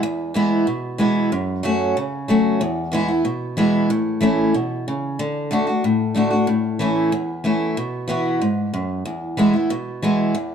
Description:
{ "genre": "bluegrass", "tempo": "186 BPM", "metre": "4/4", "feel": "straight", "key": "A major", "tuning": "A4 = 441 Hz", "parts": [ { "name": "picked steel-string acoustic guitar", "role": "solo", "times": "0.0-10.5 s", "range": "E2 to F#4", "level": "-18 LUFS", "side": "equal", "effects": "none" } ], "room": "light reverb", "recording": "dark, warm production", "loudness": "-18 LUFS", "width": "side -8 dB against mid", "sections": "0.0-5.2 A section; 5.2-10.5 A section", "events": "none", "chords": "0.0 E; 1.3 F#m; 2.6 E; 3.9 A; 5.2 D; 6.5 A; 7.8 Bsus4; 9.1 E" }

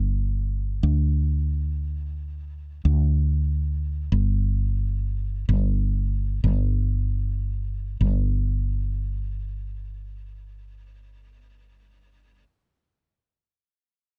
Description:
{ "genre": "pop", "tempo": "54-76 BPM", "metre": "4/4", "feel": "straight", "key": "unclear", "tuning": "A4 = 440 Hz", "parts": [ { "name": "woody fretless electric bass", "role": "bass", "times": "0.0-12.4 s", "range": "G1 to D2", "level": "-25 LUFS", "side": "equal", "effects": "none" } ], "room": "little or no reverb", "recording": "dark, warm production", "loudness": "-25 LUFS", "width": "mono", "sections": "0.0-8.0 A section; 8.0-12.5 B section", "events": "slowing down 0.8-8.0", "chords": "none" }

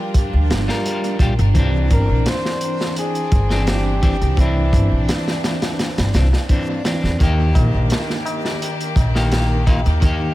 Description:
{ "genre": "trip hop", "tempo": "85 BPM", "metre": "4/4", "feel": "straight", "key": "unclear", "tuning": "A4 = 440 Hz", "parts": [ { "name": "trumpet with bucket mute", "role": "melody", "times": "0.0-5.1 s", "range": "E4 to C5", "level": "-27 LUFS", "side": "equal", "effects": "tape echo" }, { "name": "electric guitar at the edge of break-up", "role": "accompaniment", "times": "0.0-10.3 s", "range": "Eb3 to Bb4", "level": "-23 LUFS", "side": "equal", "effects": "harmonic tremolo, tape echo" }, { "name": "rich chamber string section", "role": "sustained chords", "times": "0.0-10.3 s", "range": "Eb3 to Bb4", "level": "-30 LUFS", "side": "left 1 dB", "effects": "none" }, { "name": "backwards swelling texture", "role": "texture", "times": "0.0-10.3 s", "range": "D4", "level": "-32 LUFS", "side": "right 3 dB", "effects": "built-in reverb" }, { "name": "crunchy breakbeat drum kit", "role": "drums", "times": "0.1-10.2 s", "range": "hi-hat, kick drum, snare drum", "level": "-20 LUFS", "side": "equal", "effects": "dub echo" }, { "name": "upright bass", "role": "bass", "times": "0.3-10.3 s", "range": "G1 to E2", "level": "-18 LUFS", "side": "equal", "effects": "none" }, { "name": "tabla", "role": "percussion", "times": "7.2-10.3 s", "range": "none", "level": "-32 LUFS", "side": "left 2 dB", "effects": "none" } ], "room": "studio reverb", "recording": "echo-heavy mix", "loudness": "-15 LUFS", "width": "side -16 dB against mid", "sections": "0.0-10.3 A section", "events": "none", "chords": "0.0 Gm7; 1.6 Cadd9; 7.2 Eb" }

